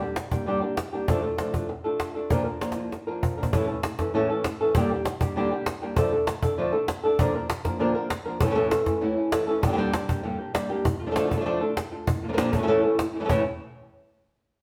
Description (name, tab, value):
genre	flamenco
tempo	196 BPM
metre	4/4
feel	straight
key	A phrygian dominant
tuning	A4 = 440 Hz
part	flamenco guitar	melody	0.0-13.4 s	G2 to Bb4	-28 LUFS	equal	none
part	cajon	percussion	0.2-13.4 s	none	-30 LUFS	equal	none
part	flamenco guitar	stabs	1.1-3.5, 8.4-13.4 s	G2 to G4	-34 LUFS	equal	none
room	wet stone room reverb, RT60 1.2 s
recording	heard from further back in the room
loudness	-26 LUFS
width	mono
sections	0.0-3.5 A section; 3.5-13.3 A section; 13.3-14.5 B section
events	drum fill 2.6-3.5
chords	0.0 Gm; 1.1 Dm; 2.3 Bb; 3.5 A; 4.8 Gm; 6.0 Dm; 7.2 Bb; 8.4 A; 9.6 Gm; 10.8 Dm; 12.1 Bb; 12.7 A